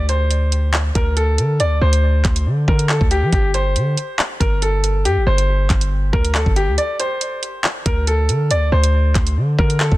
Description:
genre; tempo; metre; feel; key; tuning
hip hop, drill; 139 BPM; 4/4; half-time; unclear; A4 = 441 Hz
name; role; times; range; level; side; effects
bright concert grand piano; melody; 0.0-10.0 s; G4 to D5; -21 LUFS; equal; low-pass filter, tape echo
hard-hitting 808-style bass; bass; 0.0-10.0 s; G1 to F3; -17 LUFS; equal; none
drill drum kit; drums; 0.1-10.0 s; handclaps, hi-hat, kick drum; -18 LUFS; equal; vintage 12-bit sampler grit
room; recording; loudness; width
digital ambience; dense, heavily limited modern master, faint mains hum; -15 LUFS; side -17 dB against mid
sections
0.0-10.0 A section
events
break 6.8-7.2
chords
0.0 N.C.; 3.3 G5; 6.8 N.C.

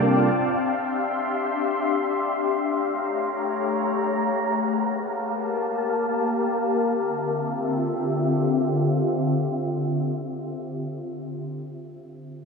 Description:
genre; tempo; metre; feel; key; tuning
amapiano; free time; none; none; D minor; A4 = 440 Hz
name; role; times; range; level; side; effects
mellow tine electric piano; accompaniment; 0.0-0.6 s; C3 to D5; -22 LUFS; right 2 dB; wide subtle chorus, low-pass filter
glassy FM pad; sustained chords; 0.0-10.6 s; D3 to C6; -23 LUFS; left 2 dB; ensemble chorus, built-in reverb, low-pass filter
room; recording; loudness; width
moderate echo chamber reverb, RT60 2.2 s; echo-heavy mix, small room reverb; -22 LUFS; side -4 dB against mid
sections
0.0-6.9 A section; 6.9-11.1 B section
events
filter sweep 0.0-6.9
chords
0.3 Dm11; 2.6 A7b9b13; 4.2 G#m9; 4.8 Gm9/Bb; 6.9 Dm11

